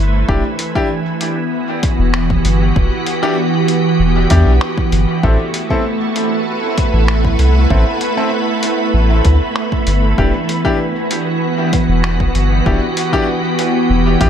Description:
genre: ambient dub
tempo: 97 BPM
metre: 4/4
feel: straight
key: unclear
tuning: A4 = 440 Hz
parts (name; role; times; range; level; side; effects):
- soft additive organ-like pad; sustained chords; 0.0-14.3 s; E3 to C5; -17 LUFS; right 2 dB; ensemble chorus, built-in reverb, vintage 12-bit sampler grit
- soft dub sub bass; bass; 0.0-14.3 s; E1 to E2; -13 LUFS; equal; none
- bright upright piano; stabs; 0.3-14.3 s; C4 to A4; -22 LUFS; left 3 dB; dub echo
- electronic kick drum; drums; 0.3-14.3 s; none; -19 LUFS; equal; overdrive
- lo-fi sampler-style drum kit; drums; 0.6-14.3 s; finger snaps, hi-hat; -24 LUFS; left 1 dB; overdrive, dub echo
- wind-like tuned noise texture; texture; 5.6-14.3 s; B3 to B5; -25 LUFS; equal; built-in reverb
room: moderate echo chamber reverb, RT60 1.8 s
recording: none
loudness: -12 LUFS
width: side -9 dB against mid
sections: 0.0-14.3 A section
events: none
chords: 0.3 Em; 5.2 Am; 10.2 Em7

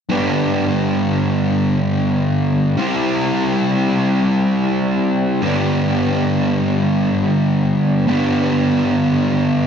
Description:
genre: rock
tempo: free time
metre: none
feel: none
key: G major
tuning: A4 = 440 Hz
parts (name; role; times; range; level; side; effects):
- fuzz guitar; solo; 0.1-9.7 s; G2 to E4; -15 LUFS; equal; distortion
room: moderate booth ambience, RT60 0.2 s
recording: dry, close 1970s-style studio recording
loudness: -15 LUFS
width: side -7 dB against mid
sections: 0.1-9.7 A section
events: none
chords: 0.1 G; 2.8 C; 5.4 G

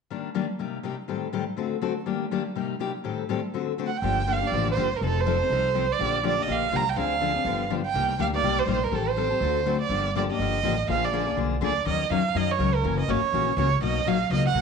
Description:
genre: acoustic string swing (jazz manouche)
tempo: 245 BPM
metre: 4/4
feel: swing 56% on 8ths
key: G minor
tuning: A4 = 437 Hz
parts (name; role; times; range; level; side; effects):
- picked steel-string acoustic guitar; accompaniment; 0.1-14.6 s; A2 to Bb4; -27 LUFS; left 9 dB; none
- warm violin; melody; 3.9-14.6 s; A4 to Bb5; -25 LUFS; right 8 dB; none
- upright bass; bass; 4.0-14.6 s; F1 to Gb2; -29 LUFS; equal; none
room: wet echo chamber reverb, RT60 1.3 s, small room ambience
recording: 1960s-style stereo with parts hard left and right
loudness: -23 LUFS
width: side -5 dB against mid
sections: 0.1-4.0 A section; 4.0-11.9 B section; 11.9-14.6 C section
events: none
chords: 0.1 Ebmaj7; 0.6 Cm7; 1.1 Am7b5; 1.6 D7; 2.1 Ebmaj7; 2.6 Cm7; 3.0 Am7b5; 3.5 D7; 4.0 Gm7; 5.0 F7; 6.0 Bb6; 7.0 Dm7b5; 7.5 G7; 8.0 Cm7; 8.9 Am7b5; 9.4 D7; 9.9 Gm7; 10.9 Bb7; 11.9 Ebm7; 12.8 Gb7; 13.8 Bmaj7

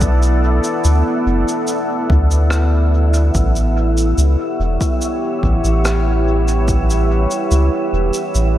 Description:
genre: ambient dub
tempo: 72 BPM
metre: 4/4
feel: straight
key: unclear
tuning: A4 = 440 Hz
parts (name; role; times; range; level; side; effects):
- deep dark ambient pad; sustained chords; 0.0-8.6 s; B3 to F#5; -19 LUFS; equal; chorus, built-in reverb
- soft dub sub bass; bass; 0.0-8.6 s; E1 to D2; -14 LUFS; equal; tube saturation
- electronic kick drum; drums; 0.0-6.8 s; none; -19 LUFS; equal; none
- shaker and rim click; drums; 0.0-8.5 s; none; -27 LUFS; equal; dub echo
- wind-like tuned noise texture; texture; 0.0-8.6 s; E4 to E5; -27 LUFS; equal; built-in reverb, analog chorus
room: moderate cathedral reverb, RT60 4.2 s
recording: dreamy mix soaked in reverb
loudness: -13 LUFS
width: side -12 dB against mid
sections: 0.0-8.6 A section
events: none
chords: 0.0 Bm7; 3.3 A13

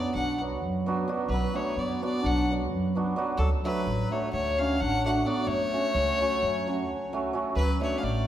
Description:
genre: balkan folk, Balkan wedding band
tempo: 258 BPM (eighths)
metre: 9/8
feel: straight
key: unclear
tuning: A4 = 440 Hz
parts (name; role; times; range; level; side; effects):
- clear fiddle; melody; 0.0-8.3 s; A4 to F#5; -30 LUFS; left 2 dB; none
- mellow clarinet; second line; 0.0-8.3 s; F#3 to D4; -32 LUFS; left 1 dB; none
- hammered dulcimer; accompaniment; 0.0-8.3 s; F#3 to F#4; -31 LUFS; right 2 dB; none
- upright bass; bass; 0.1-8.3 s; A1 to F#2; -30 LUFS; equal; none
room: wet scoring stage reverb, RT60 1.5 s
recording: recorded in a church or concert hall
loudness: -25 LUFS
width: side -11 dB against mid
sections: 0.0-7.5 A section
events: none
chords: 0.0 Bm; 3.4 D; 5.5 F#m; 7.5 D

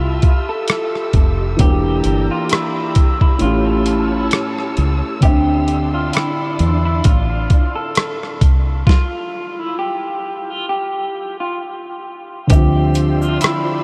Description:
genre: lo-fi hip hop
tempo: 66 BPM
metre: 4/4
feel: swing 56% on 16ths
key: D minor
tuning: A4 = 441 Hz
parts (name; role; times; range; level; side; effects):
- electric guitar through a small old amp; melody; 0.0-13.8 s; E4 to A4; -25 LUFS; equal; lush chorus, low-pass filter, delay
- felt-muted upright piano; accompaniment; 0.0-13.8 s; A2 to E5; -22 LUFS; equal; low-pass filter
- warm studio string section; sustained chords; 0.0-13.8 s; F3 to E6; -31 LUFS; equal; low-pass filter
- deep dub fingered electric bass; bass; 0.0-13.4 s; E1 to E2; -20 LUFS; equal; none
- boom bap sampler-style drum kit; drums; 0.2-13.7 s; hi-hat, kick drum, rim click, snare drum; -17 LUFS; equal; none
- egg shaker; percussion; 12.5-13.6 s; none; -45 LUFS; equal; none
room: moderate huge ambient reverb, RT60 8.3 s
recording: dreamy mix soaked in reverb, cassette tape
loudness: -17 LUFS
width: mono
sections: 0.0-12.5 A section; 12.5-13.8 A section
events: stop 8.9-12.5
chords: 0.0 Fmaj9; 1.6 Em7b5; 3.4 A7; 5.2 Dsus2; 12.5 Dm9

